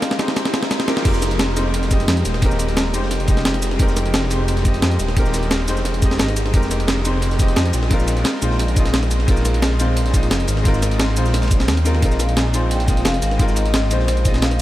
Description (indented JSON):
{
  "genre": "liquid drum and bass",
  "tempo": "175 BPM",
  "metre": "4/4",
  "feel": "straight",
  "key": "unclear",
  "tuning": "A4 = 440 Hz",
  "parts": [
    { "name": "vibraphone with medium hard mallets", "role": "melody", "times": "0.0-0.2, 12.0-14.6 s", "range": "C5 to Ab5", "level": "-29 LUFS", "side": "left 2 dB", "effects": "tape echo" },
    { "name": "bright baby grand piano", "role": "accompaniment", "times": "0.0-14.6 s", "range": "G3 to Eb5", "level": "-23 LUFS", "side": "left 1 dB", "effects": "analog delay" },
    { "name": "breakbeat sampler-style drum kit", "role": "drums", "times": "0.0-14.6 s", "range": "cabasa, crash cymbal, hi-hat, snare drum", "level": "-22 LUFS", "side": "equal", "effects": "none" },
    { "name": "crunchy breakbeat drum kit", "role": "drums", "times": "0.0-14.5 s", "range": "ride cymbal, snare drum", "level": "-32 LUFS", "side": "equal", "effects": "none" },
    { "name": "riser", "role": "sound effects", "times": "0.1-1.1 s", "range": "none", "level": "-32 LUFS", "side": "right 1 dB", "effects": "none" },
    { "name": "swelling detuned saw bass", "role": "bass", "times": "1.1-14.6 s", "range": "Eb1 to F2", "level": "-20 LUFS", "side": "equal", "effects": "tube saturation" },
    { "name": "electronic kick drum", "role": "drums", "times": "1.1-14.3 s", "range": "none", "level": "-17 LUFS", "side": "equal", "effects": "none" }
  ],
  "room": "light reverb, small room ambience",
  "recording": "none",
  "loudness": "-16 LUFS",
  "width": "side -15 dB against mid",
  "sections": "0.0-1.1 A section; 1.1-14.6 B section",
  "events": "build-up 0.0-1.1; drum fill 0.0-1.1; riser 0.1-1.1; drop 1.1-14.6",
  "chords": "0.0 Fm11 (rootless); 1.1 Fm11; 7.9 Bb9sus4"
}